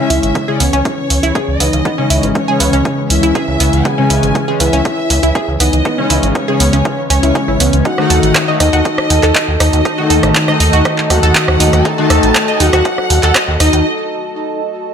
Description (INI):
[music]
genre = melodic techno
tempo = 120 BPM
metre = 4/4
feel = straight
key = C# minor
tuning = A4 = 439 Hz
[part]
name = soft octave-layered synth lead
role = melody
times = 0.0-13.9 s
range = C#4 to A4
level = -19 LUFS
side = left 3 dB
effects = chorus, tremolo, sidechain pumping, tape echo
[part]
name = warm symphonic violin section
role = second line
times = 0.0-13.9 s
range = C#5 to A5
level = -21 LUFS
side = right 1 dB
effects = sidechain pumping, ping-pong delay
[part]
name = dark analog pad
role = sustained chords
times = 0.6-14.9 s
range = E3 to A5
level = -22 LUFS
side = right 2 dB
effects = chorus, sidechain pumping
[part]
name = analog pluck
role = arpeggios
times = 0.0-13.7 s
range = B3 to D#5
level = -19 LUFS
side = right 2 dB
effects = chorus, phaser, sidechain pumping, ping-pong delay
[part]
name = analog synth brass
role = stabs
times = 0.0-12.5 s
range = C#3 to D#4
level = -17 LUFS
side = left 2 dB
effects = chorus, cassette tape, sidechain pumping, ping-pong delay
[part]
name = gritty driven synth bass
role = bass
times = 0.1-13.8 s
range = G#1 to D#2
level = -14 LUFS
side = right 1 dB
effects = sidechain pumping
[part]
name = punchy analog drum machine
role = drums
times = 0.1-13.8 s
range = handclaps, hi-hat, rim click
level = -16 LUFS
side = right 2 dB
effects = none
[part]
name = electronic kick drum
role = drums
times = 0.4-13.5 s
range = none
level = -21 LUFS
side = right 1 dB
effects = high-pass filter on kick, high-pass filter on room
[sound]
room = moderate lush hall reverb, RT60 1.6 s, digital ambience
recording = none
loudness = -10 LUFS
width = side -7 dB against mid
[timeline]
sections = 0.0-14.9 A section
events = build-up 0.0-14.9; break 13.9-14.9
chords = 0.0 C#m7; 7.9 D#dim